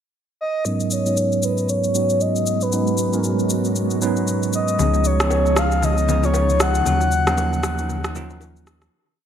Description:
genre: amapiano.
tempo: 116 BPM.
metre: 4/4.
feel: swing 58% on 16ths.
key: G# dorian.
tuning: A4 = 443 Hz.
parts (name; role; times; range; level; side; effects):
breathy flute-like synth lead; melody; 0.4-8.4 s; B4 to F#5; -22 LUFS; left 1 dB; chorus, low-pass filter, ping-pong delay.
bell-like tine electric piano; accompaniment; 0.7-9.0 s; G#2 to C#5; -22 LUFS; right 3 dB; auto-pan, low-pass filter.
granular cloud pad; sustained chords; 1.7-8.9 s; C#3 to A#4; -28 LUFS; equal; built-in reverb, low-pass filter.
electronic shaker and rim click; drums; 0.7-8.9 s; none; -26 LUFS; left 1 dB; gated reverb.
warm sub bass; bass; 4.8-8.9 s; C#2 to D#2; -21 LUFS; left 1 dB; none.
congas and bongos; percussion; 4.8-8.5 s; none; -29 LUFS; left 9 dB; none.
room: moderate plate reverb, RT60 2.2 s.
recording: bright 1980s-style digital production.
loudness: -17 LUFS.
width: side -9 dB against mid.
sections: 0.0-0.7 pickup bar; 0.7-8.9 breakdown.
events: filter sweep 0.7-8.9; fade-out 6.9-8.9; break 7.9-8.9.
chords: 0.0 N.C.; 0.7 G#m11; 4.8 C#9; 6.9 D#m9.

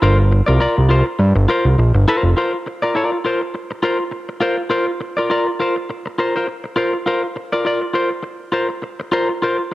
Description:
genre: funk.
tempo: 102 BPM.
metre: 4/4.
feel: swing 56% on 16ths.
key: unclear.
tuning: A4 = 440 Hz.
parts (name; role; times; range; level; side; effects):
clean electric guitar; accompaniment; 0.0-9.7 s; F4 to D5; -18 LUFS; left 1 dB; spring reverb.
fat analog bass; bass; 0.0-2.3 s; F1 to G2; -12 LUFS; equal; none.
room: little or no reverb.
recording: dry, close 1970s-style studio recording.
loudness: -16 LUFS.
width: side -17 dB against mid.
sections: 0.0-2.4 A section; 2.4-9.7 B section.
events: none.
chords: 0.0 Gm7; 2.4 Fsus4.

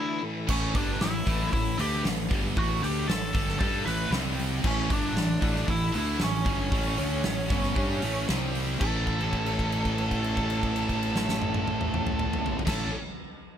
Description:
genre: quiet-loud alternative rock.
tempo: 115 BPM.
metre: 4/4.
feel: straight.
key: A mixolydian.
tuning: A4 = 441 Hz.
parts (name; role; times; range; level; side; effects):
octave-fuzz lead guitar; melody; 0.0-12.9 s; C#4 to B5; -32 LUFS; right 1 dB; distortion, analog delay.
clear studio string section; sustained chords; 0.0-12.9 s; C3 to G5; -42 LUFS; equal; none.
fuzz guitar; riff; 0.0-12.9 s; G2 to A4; -32 LUFS; equal; distortion.
heavy high-gain guitar; riff; 0.5-12.9 s; G2 to G4; -34 LUFS; equal; distortion.
fuzz fingered electric bass; bass; 0.5-12.9 s; G1 to G2; -32 LUFS; equal; overdrive.
huge arena drum kit; drums; 0.5-12.8 s; crash cymbal, hi-hat, kick drum, snare drum, toms; -30 LUFS; equal; none.
room: little or no reverb.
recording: none.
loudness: -25 LUFS.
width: side -9 dB against mid.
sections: 0.0-8.8 A section; 8.8-13.0 B section.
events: held note 8.8-12.7.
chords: 0.0 A; 4.1 C5; 4.6 A; 8.3 C5; 8.8 A.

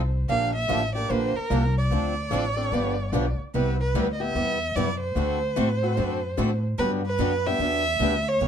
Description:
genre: acoustic string swing (jazz manouche).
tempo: 148 BPM.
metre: 4/4.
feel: swing 64% on 8ths.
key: G major.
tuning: A4 = 435 Hz.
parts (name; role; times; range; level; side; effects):
warm violin; melody; 0.0-8.5 s; Bb4 to F5; -27 LUFS; right 2 dB; plate reverb.
upright bass; bass; 0.0-8.5 s; G1 to A2; -26 LUFS; equal; none.
picked steel-string acoustic guitar; accompaniment; 0.3-8.5 s; C3 to B4; -33 LUFS; right 7 dB; none.
picked swing-style acoustic guitar; accompaniment; 0.3-8.5 s; C3 to A4; -29 LUFS; left 4 dB; none.
room: moderate small room reverb, RT60 0.5 s.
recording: dark, warm production.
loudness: -22 LUFS.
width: side -8 dB against mid.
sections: 0.0-8.5 A section.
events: none.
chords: 0.3 Bb6; 1.9 Dm7; 2.7 G7; 3.5 Cmaj7; 5.2 D7; 6.8 Gmaj7.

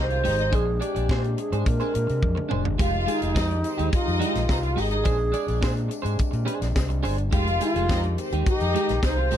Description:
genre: disco.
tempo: 106 BPM.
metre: 4/4.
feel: straight.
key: F dorian.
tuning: A4 = 438 Hz.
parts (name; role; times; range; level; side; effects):
wooden-headed alto flute; melody; 0.0-9.4 s; Eb4 to C5; -28 LUFS; equal; none.
warm studio string section; second line; 0.0-9.4 s; C4 to F5; -29 LUFS; left 1 dB; none.
mellow French horn section; sustained chords; 0.0-9.4 s; C3 to G4; -33 LUFS; left 2 dB; none.
overdriven fingered electric bass; bass; 0.0-9.4 s; F1 to C3; -26 LUFS; equal; none.
clean electric guitar; accompaniment; 0.1-9.4 s; Ab3 to D5; -30 LUFS; right 3 dB; wide subtle chorus.
tight funk drum kit; drums; 0.1-9.4 s; hi-hat, kick drum, snare drum, toms; -26 LUFS; equal; none.
tambourine; percussion; 2.8-9.4 s; none; -47 LUFS; left 7 dB; none.
room: little or no reverb.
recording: dark, warm production.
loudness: -21 LUFS.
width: side -10 dB against mid.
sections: 0.0-9.4 A section.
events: drum fill 2.2-2.8.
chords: 0.0 Fm9; 0.5 Bb9; 2.8 Fm9; 5.1 Bb9; 7.3 Fm9.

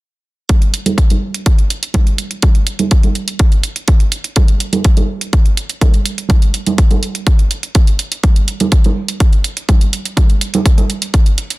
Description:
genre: house.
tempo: 124 BPM.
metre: 4/4.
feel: straight.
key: none.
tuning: none.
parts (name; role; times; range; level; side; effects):
electronic hi-hat; drums; 0.5-11.6 s; none; -21 LUFS; right 3 dB; overdrive, sidechain pumping on hats.
electronic kick drum; drums; 0.5-11.2 s; none; -11 LUFS; equal; overdrive.
tambourine and congas; percussion; 0.5-11.6 s; none; -20 LUFS; right 4 dB; sidechain pumping on perc, low-pass filter on perc.
room: little or no reverb.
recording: dense, heavily limited modern master.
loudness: -11 LUFS.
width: side -20 dB against mid.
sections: 0.5-11.6 A section.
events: filter sweep on drum 0.5-11.6.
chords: none.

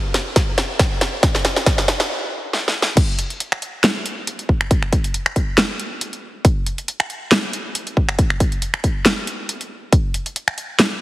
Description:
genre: dubstep.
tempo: 138 BPM.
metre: 4/4.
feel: swing 54% on 16ths, half-time.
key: none.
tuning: none.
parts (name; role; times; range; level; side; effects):
dubstep drum kit; drums; 0.1-10.9 s; crash cymbal, finger snaps, handclaps, hi-hat, snare drum; -19 LUFS; equal; high-pass filter on snare, high-pass filter on hats, high-pass filter on cymbals.
electronic kick drum; drums; 0.4-10.0 s; none; -18 LUFS; equal; none.
room: moderate lush hall reverb, RT60 2.0 s.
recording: heavily compressed radio sound, multiband compression.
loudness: -17 LUFS.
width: side -17 dB against mid.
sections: 0.0-3.0 A section; 3.0-11.0 B section.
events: build-up 0.0-3.0; drum fill 0.0-2.1, 2.5-3.0; stop 2.1-3.0; drop 3.0-11.0.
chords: none.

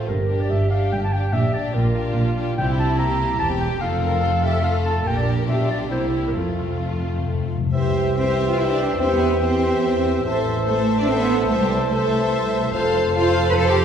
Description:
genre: quick classical-period movement for symphony orchestra.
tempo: 144 BPM.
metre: 3/4.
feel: rubato.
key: F major, C major from 7.7 s.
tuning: A4 = 440 Hz.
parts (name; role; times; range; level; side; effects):
clear chamber violin section; melody; 0.0-13.8 s; F4 to B5; -34 LUFS; left 4 dB; none.
clear chamber violin section; second line; 0.0-13.8 s; A3 to F5; -30 LUFS; left 4 dB; none.
warm clarinet; second line; 0.0-13.8 s; A4 to Bb5; -27 LUFS; left 1 dB; none.
rich chamber viola section; accompaniment; 0.0-13.8 s; E4 to C5; -26 LUFS; right 2 dB; none.
rich chamber double bass section; bass; 0.1-13.8 s; E1 to E2; -24 LUFS; right 1 dB; none.
rich studio cello section; bass; 0.1-13.8 s; E2 to B4; -24 LUFS; right 2 dB; none.
timpani; percussion; 2.6-3.2, 6.4-7.7 s; F2 to C3; -26 LUFS; left 4 dB; none.
concert flute; second line; 7.7-13.8 s; G5 to A5; -29 LUFS; left 4 dB; none.
warm oboe; second line; 7.7-13.8 s; C5 to E5; -30 LUFS; equal; none.
dark bassoon; accompaniment; 7.7-13.8 s; E3 to F3; -29 LUFS; right 1 dB; none.
warm French horn section; sustained chords; 7.7-13.8 s; G4 to C5; -25 LUFS; left 2 dB; none.
room: wet scoring stage reverb, RT60 1.7 s.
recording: heard from further back in the room.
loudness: -18 LUFS.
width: side -8 dB against mid.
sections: 0.0-7.7 A section; 7.7-13.8 B section.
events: timpani fill 6.4-7.7.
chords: 0.1 G5; 1.3 Gm/Bb; 2.6 C7; 3.8 F; 5.1 Gm/Bb; 5.5 G7/B; 5.9 C7; 6.4 F; 7.7 C; 9.0 C/E; 10.3 Am; 11.5 Am/C; 12.7 F.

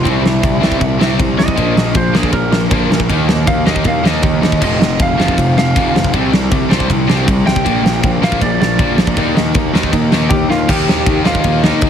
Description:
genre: punk rock.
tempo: 158 BPM.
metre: 4/4.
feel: straight.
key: unclear.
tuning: A4 = 440 Hz.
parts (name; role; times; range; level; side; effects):
lightly driven lead guitar; melody; 0.0-11.9 s; Eb4 to G5; -19 LUFS; right 1 dB; none.
cranked stack guitar; riff; 0.0-11.9 s; F2 to Eb4; -21 LUFS; left 12 dB; overdrive.
crunchy overdriven guitar; riff; 0.0-11.9 s; F2 to Eb4; -21 LUFS; right 10 dB; none.
fuzz guitar; riff; 0.0-11.9 s; F2 to Eb4; -21 LUFS; equal; distortion.
fuzz picked electric bass; bass; 0.0-11.9 s; F1 to Eb2; -18 LUFS; equal; overdrive.
big rock drum kit; drums; 0.1-11.9 s; crash cymbal, kick drum, ride cymbal, snare drum; -15 LUFS; equal; none.
room: light reverb.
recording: heavily compressed radio sound.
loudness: -11 LUFS.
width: side -8 dB against mid.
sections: 0.0-10.7 A section; 10.7-11.9 B section.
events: lead electric guitar solo 0.0-10.7; drum fill 10.5.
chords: 0.1 C; 1.6 Bb5; 3.1 Eb5; 4.6 F5; 6.1 C5; 7.7 Bb; 9.2 Eb.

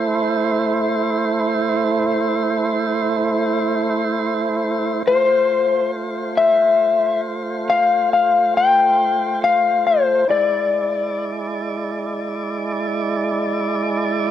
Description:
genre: blues.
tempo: 46 BPM (dotted quarters).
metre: 12/8.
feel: straight.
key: A harmonic minor.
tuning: A4 = 441 Hz.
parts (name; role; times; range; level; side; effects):
tonewheel organ; sustained chords; 0.0-14.3 s; G#3 to D5; -20 LUFS; right 3 dB; overdrive, slow rotary speaker.
electric slide guitar; melody; 5.1-11.2 s; C5 to G5; -15 LUFS; left 4 dB; none.
room: moderate lush hall reverb, RT60 3.0 s.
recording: home recording on cassette.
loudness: -16 LUFS.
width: side -10 dB against mid.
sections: 0.0-14.3 A section.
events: none.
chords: 0.0 Am; 5.1 F; 10.3 E7.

